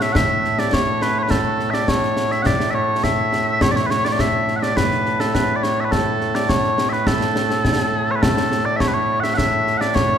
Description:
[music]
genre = scottish traditional, Scottish pipe music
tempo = 104 BPM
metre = 4/4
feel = straight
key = A major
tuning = A4 = 440 Hz
[part]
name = mellow small bagpipes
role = melody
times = 0.0-10.2 s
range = A2 to F#5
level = -18 LUFS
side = equal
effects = none
[part]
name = concert snare drum and concert bass drum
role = drums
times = 0.0-10.1 s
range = none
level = -21 LUFS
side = equal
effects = none
[sound]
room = moderate concert hall reverb, RT60 2.0 s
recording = recorded in a church or concert hall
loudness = -16 LUFS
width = side -8 dB against mid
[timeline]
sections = 0.0-8.2 A section; 8.2-10.2 A section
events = none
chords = none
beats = 0.15 0.73 | 1.30 1.88 2.46 3.04 | 3.61 4.19 4.77 5.34 | 5.92 6.50 7.07 7.65 | 8.23 8.80 9.38 9.96

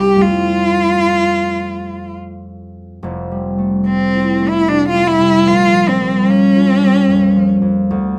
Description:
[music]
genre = classical, impressionist duo for cello and harp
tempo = 61-76 BPM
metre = 3/4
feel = rubato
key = F major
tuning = A4 = 440 Hz
[part]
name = rich cello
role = melody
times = 0.0-7.5 s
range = C4 to G4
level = -17 LUFS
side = equal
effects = none
[part]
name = concert harp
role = accompaniment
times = 0.0-8.2 s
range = F1 to F4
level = -17 LUFS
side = equal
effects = none
[sound]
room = moderate studio reverb, RT60 0.7 s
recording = none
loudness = -14 LUFS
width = mono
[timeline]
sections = 0.0-3.0 A section; 3.0-8.2 B section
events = none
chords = 0.2 Fmaj9; 5.5 Bbm6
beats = | 0.21 1.18 2.13 | 3.04 3.86 4.67 | 5.47 6.29 7.09 | 7.89

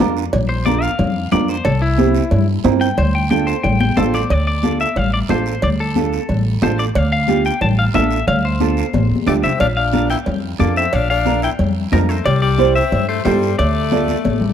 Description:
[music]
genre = latin, cumbia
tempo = 181 BPM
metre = 4/4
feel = straight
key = D minor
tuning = A4 = 441 Hz
[part]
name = clean electric guitar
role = melody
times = 0.0-14.5 s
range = D4 to A5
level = -22 LUFS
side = left 4 dB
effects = spring reverb
[part]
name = nylon-string guitar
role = accompaniment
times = 0.0-14.2 s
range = C4 to D5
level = -20 LUFS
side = right 12 dB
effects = none
[part]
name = upright bass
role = bass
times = 0.0-14.5 s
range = A1 to G2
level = -18 LUFS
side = equal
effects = none
[part]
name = congas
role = percussion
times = 0.0-14.5 s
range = none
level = -22 LUFS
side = left 6 dB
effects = none
[part]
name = guiro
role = percussion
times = 0.0-14.5 s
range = none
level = -35 LUFS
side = right 16 dB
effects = none
[part]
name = timbales and cowbell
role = percussion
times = 0.0-14.4 s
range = none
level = -24 LUFS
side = right 3 dB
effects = none
[part]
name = edgy tenor saxophone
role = second line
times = 9.3-14.5 s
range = F3 to E4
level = -23 LUFS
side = left 10 dB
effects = none
[sound]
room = small room reverb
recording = dry, close 1970s-style studio recording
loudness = -14 LUFS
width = side -9 dB against mid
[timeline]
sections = 0.0-4.3 A section; 4.3-14.5 B section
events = clean electric guitar solo 0.0-4.3; drum fill 3.8-4.3, 8.9-9.6, 14.1-14.5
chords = 0.0 Bb; 1.7 C; 3.0 Dm; 9.6 Bb; 12.3 C; 13.6 Dm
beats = 0.00 | 0.33 0.66 0.99 1.32 | 1.65 1.98 2.31 2.65 | 2.98 3.31 3.64 3.97 | 4.30 4.63 4.96 5.29 | 5.63 5.96 6.29 6.62 | 6.95 7.28 7.61 7.95 | 8.28 8.61 8.94 9.27 | 9.60 9.93 10.27 10.60 | 10.93 11.26 11.59 11.93 | 12.26 12.59 12.92 13.25 | 13.58 13.92 14.25

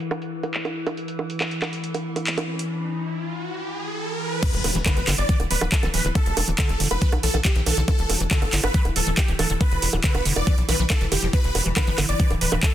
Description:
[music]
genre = psychedelic trance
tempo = 139 BPM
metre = 4/4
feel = straight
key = E minor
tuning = A4 = 440 Hz
[part]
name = evolving wavetable pad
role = sustained chords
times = 0.0-12.7 s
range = E3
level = -32 LUFS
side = left 1 dB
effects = chorus, built-in reverb, sidechain pumping
[part]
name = garage drum kit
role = drums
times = 0.0-12.7 s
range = bongos, crash cymbal, handclaps, hi-hat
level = -26 LUFS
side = right 3 dB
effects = overdrive
[part]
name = riser and impact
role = sound effects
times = 2.3-6.2 s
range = none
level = -32 LUFS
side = equal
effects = none
[part]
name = dense compressed supersaw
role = melody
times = 4.4-12.7 s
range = G4 to D5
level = -28 LUFS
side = equal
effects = phaser, sidechain pumping, digital delay
[part]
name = vowel-sweep wobble bass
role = second line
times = 4.4-11.7 s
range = E3 to B3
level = -41 LUFS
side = left 3 dB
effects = none
[part]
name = liquid acid bass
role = riff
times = 4.4-12.6 s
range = D3 to F3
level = -30 LUFS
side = moving between left 4 dB and right 3 dB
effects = chorus, auto-pan, sidechain pumping, digital delay
[part]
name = electronic kick drum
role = drums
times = 4.4-12.7 s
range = none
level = -21 LUFS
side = equal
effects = overdrive
[part]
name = tight sequencer bass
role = bass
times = 4.5-12.6 s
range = D1 to B1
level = -24 LUFS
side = equal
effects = none
[sound]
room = digital ambience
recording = dense, heavily limited modern master, low-pass filter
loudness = -20 LUFS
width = side -12 dB against mid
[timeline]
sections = 0.0-4.4 A section; 4.4-12.7 B section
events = riser 2.3-4.4; drop 4.4-12.7; impact 4.4-6.2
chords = 0.0 N.C.; 4.4 E5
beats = 0.11 0.54 | 0.97 1.41 1.84 2.27 | 2.70 3.13 3.56 4.00 | 4.43 4.86 5.29 5.72 | 6.15 6.58 7.02 7.45 | 7.88 8.31 8.74 9.18 | 9.61 10.04 10.47 10.90 | 11.33 11.77 12.20 12.63

